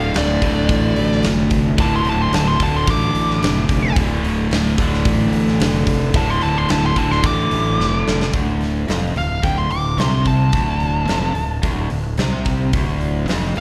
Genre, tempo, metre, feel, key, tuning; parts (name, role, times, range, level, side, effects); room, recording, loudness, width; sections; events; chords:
blues rock power trio and southern rock; 110 BPM; 4/4; straight; D minor; A4 = 440 Hz
fuzz lead guitar; melody; 0.0-13.6 s; D5 to D6; -25 LUFS; equal; distortion, slapback echo, analog delay
cranked stack guitar; riff; 0.0-13.6 s; D2 to D3; -22 LUFS; equal; overdrive, slapback echo
fuzz fingered electric bass; bass; 0.0-13.6 s; D1 to C2; -23 LUFS; equal; overdrive
big rock drum kit; drums; 0.1-13.6 s; hi-hat, kick drum, snare drum; -24 LUFS; equal
little or no reverb; live gig heard through the venue's PA, recital hall reverb; -18 LUFS; mono
0.0-8.3 A section; 8.3-13.6 B section
lead electric guitar solo 0.0-8.3; drum fill 7.8-8.3
0.0 Dm